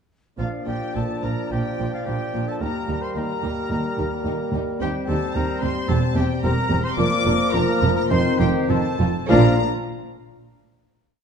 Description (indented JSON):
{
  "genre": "quick classical-period movement for symphony orchestra",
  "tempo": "98-111 BPM",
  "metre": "4/4",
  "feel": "rubato",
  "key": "Bb major",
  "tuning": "A4 = 437 Hz",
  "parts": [
    { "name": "rich studio violin section", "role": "melody", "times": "0.4-9.6 s", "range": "F5 to D6", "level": "-31 LUFS", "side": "left 3 dB", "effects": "none" },
    { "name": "bright concert flute", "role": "second line", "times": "0.4-9.6 s", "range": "F5 to D6", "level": "-32 LUFS", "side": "left 2 dB", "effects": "none" },
    { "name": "clear clarinet", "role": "second line", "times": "0.4-9.6 s", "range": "Bb4 to D5", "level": "-33 LUFS", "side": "equal", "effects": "none" },
    { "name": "warm oboe", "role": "second line", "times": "0.4-9.5 s", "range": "F4 to D5", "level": "-32 LUFS", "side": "right 1 dB", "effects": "none" },
    { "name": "warm studio violin section", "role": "second line", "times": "0.4-9.6 s", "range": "C4 to Bb4", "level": "-32 LUFS", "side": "left 3 dB", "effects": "none" },
    { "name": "dark studio viola section", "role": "accompaniment", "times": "0.4-9.6 s", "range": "Eb3 to C4", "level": "-29 LUFS", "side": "equal", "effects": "none" },
    { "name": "warm bassoon", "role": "accompaniment", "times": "0.4-9.5 s", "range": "Eb3 to G3", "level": "-29 LUFS", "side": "right 2 dB", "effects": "none" },
    { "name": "warm French horn section", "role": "sustained chords", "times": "0.4-9.5 s", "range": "Eb3 to D4", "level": "-28 LUFS", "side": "left 4 dB", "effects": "none" },
    { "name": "rich studio double bass section", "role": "bass", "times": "0.4-9.6 s", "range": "E1 to Eb2", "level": "-26 LUFS", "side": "right 3 dB", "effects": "none" },
    { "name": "warm studio cello section", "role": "bass", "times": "0.4-9.6 s", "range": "Eb2 to Bb2", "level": "-26 LUFS", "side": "right 2 dB", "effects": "none" }
  ],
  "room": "wet scoring stage reverb, RT60 1.5 s",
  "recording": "dark, warm production",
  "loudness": "-19 LUFS",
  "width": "side -6 dB against mid",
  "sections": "0.4-9.3 A section; 9.3-11.2 final chord",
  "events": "none",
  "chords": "0.4 Bb; 2.6 Eb; 4.8 Cm/Eb; 5.9 C/E; 7.0 Bb/F; 8.1 F7; 9.3 Bb"
}